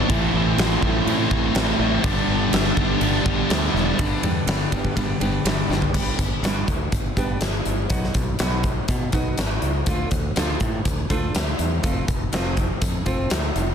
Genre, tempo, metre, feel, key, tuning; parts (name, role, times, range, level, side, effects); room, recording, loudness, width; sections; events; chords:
quiet-loud alternative rock; 122 BPM; 4/4; straight; G major, G mixolydian from 5.9 s; A4 = 443 Hz
crunchy overdriven guitar; riff; 0.0-4.0 s; G2 to A3; -25 LUFS; left 1 dB
fuzz guitar; riff; 0.0-4.0 s; G2 to E4; -25 LUFS; right 14 dB; distortion
scooped high-gain guitar; riff; 0.0-5.9 s; G2 to E4; -26 LUFS; left 11 dB; distortion
modern bright fingered electric bass; bass; 0.0-13.7 s; E1 to B2; -26 LUFS; equal
huge arena drum kit; drums; 0.1-13.7 s; crash cymbal, hi-hat, kick drum, ride cymbal, snare drum, toms; -23 LUFS; equal
fingerpicked steel-string acoustic guitar; arpeggios; 4.0-13.6 s; G2 to G4; -28 LUFS; right 3 dB; plate reverb
light reverb; dense, heavily limited modern master; -19 LUFS; side -8 dB against mid
0.0-4.0 A section; 4.0-5.9 B section; 5.9-13.7 C section
drum fill 5.7
0.1 Am; 2.0 G; 7.9 B; 9.9 Dm; 11.8 F